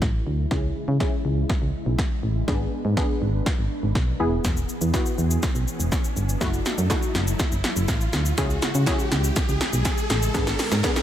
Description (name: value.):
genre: dance-pop.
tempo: 122 BPM.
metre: 4/4.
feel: straight.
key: F# minor.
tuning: A4 = 440 Hz.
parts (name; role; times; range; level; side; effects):
string machine, cellos; sustained chords; 0.0-11.0 s; C#3 to B4; -32 LUFS; equal; ensemble chorus, sidechain pumping, low-pass filter.
solid FM bass; bass; 0.0-10.8 s; E1 to C#3; -24 LUFS; equal; sidechain pumping.
punchy analog drum machine; drums; 0.0-11.0 s; hi-hat, kick drum, shaker, snare drum; -24 LUFS; equal; overdrive.
riser; sound effects; 1.8-11.0 s; none; -33 LUFS; equal; none.
wide unison pluck; accompaniment; 0.5-11.0 s; A3 to G#4; -29 LUFS; left 1 dB; sidechain pumping, low-pass filter.
group handclap; percussion; 6.9-11.0 s; none; -39 LUFS; right 4 dB; none.
room: little or no reverb.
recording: none.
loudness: -21 LUFS.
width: side -11 dB against mid.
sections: 0.0-11.0 A section.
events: build-up 0.0-11.0; drum fill 0.0-11.0; filter sweep 0.0-11.0; riser 1.8-11.0.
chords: 0.0 F#m7; 0.5 C#m; 2.5 G#dim; 4.2 E; 6.4 F#m7; 8.4 C#m; 10.3 G#dim.